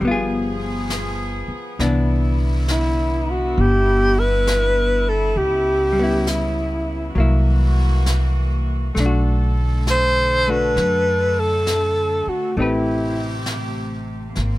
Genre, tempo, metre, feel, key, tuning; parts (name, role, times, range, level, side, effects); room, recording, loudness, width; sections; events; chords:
jazz ballad; 67 BPM; 4/4; swing 66% on 8ths; A4 = 435 Hz
breathy alto saxophone; melody; 0.0-13.4 s; E4 to C5; -19 LUFS; equal
hollow-body jazz guitar; accompaniment; 0.0-14.4 s; E3 to B4; -25 LUFS; left 2 dB
rich symphonic cello section; sustained chords; 0.0-14.6 s; C3 to A4; -28 LUFS; left 1 dB
upright bass; bass; 0.0-14.6 s; G1 to F#2; -20 LUFS; equal
jazz brush drum kit; drums; 0.0-14.6 s; brushed snare drum, hi-hat, snare drum; -31 LUFS; equal
little or no reverb; close, detailed microphones; -17 LUFS; side -17 dB against mid
0.0-14.6 A section
0.0 G7b9; 1.8 Cmaj9; 5.4 C#m7b5; 7.2 C7#11; 9.0 Bm7; 12.6 Am9